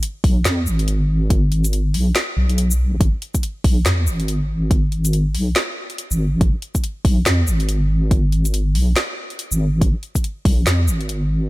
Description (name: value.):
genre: deep dubstep.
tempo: 141 BPM.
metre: 4/4.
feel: swing 60% on 16ths, half-time.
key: G# dorian.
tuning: A4 = 436 Hz.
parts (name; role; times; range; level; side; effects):
deep house drum kit; drums; 0.0-11.2 s; handclaps, hi-hat, shaker, snare drum; -23 LUFS; equal; none.
deep soft wobble bass; bass; 0.2-11.5 s; G#1 to E#2; -17 LUFS; equal; chorus.
electronic kick drum; drums; 0.2-10.6 s; none; -17 LUFS; equal; none.
room: little or no reverb.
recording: none.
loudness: -16 LUFS.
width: side -19 dB against mid.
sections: 0.0-11.5 A section.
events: none.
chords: none.